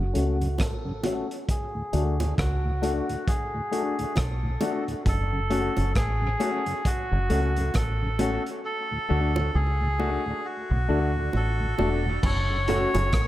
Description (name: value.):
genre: dub reggae.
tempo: 67 BPM.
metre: 4/4.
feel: swing 59% on 16ths.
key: F# minor.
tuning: A4 = 440 Hz.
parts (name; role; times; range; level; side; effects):
melodica; melody; 0.0-13.3 s; F#4 to C#5; -30 LUFS; right 1 dB; low-pass filter, dub echo.
tonewheel organ; accompaniment; 0.0-13.0 s; D2 to F#4; -34 LUFS; equal; stopped rotary speaker, low-pass filter, dub echo.
deep dub fingered electric bass; bass; 0.0-13.3 s; E1 to D2; -26 LUFS; equal; none.
warm upright piano; stabs; 0.1-12.9 s; A3 to F#4; -31 LUFS; left 4 dB; low-pass filter, dub echo.
crunchy breakbeat drum kit; drums; 0.1-13.3 s; crash cymbal, hi-hat, kick drum, rim click; -29 LUFS; equal; none.
bongos; percussion; 0.6-13.1 s; none; -35 LUFS; right 4 dB; dub echo.
muted clav; arpeggios; 12.2-13.1 s; A2 to C#3; -37 LUFS; left 2 dB; overdrive, dub echo.
mellow electric guitar; accompaniment; 12.7-12.9 s; F#4 to C#5; -31 LUFS; right 6 dB; low-pass filter, dub echo.
room: light reverb, studio ambience.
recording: none.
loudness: -23 LUFS.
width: side -14 dB against mid.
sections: 0.0-12.2 A section; 12.2-13.3 B section.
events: break 0.0-12.2; filter sweep 0.0-12.2; part muted 8.6-12.2.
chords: 0.0 F#m; 1.5 D; 5.1 F#m; 8.6 D; 12.2 F#m.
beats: 0.59 | 1.48 2.38 3.27 4.17 | 5.06 5.96 6.85 7.75 | 8.64 9.54 10.44 11.33 | 12.23 13.13.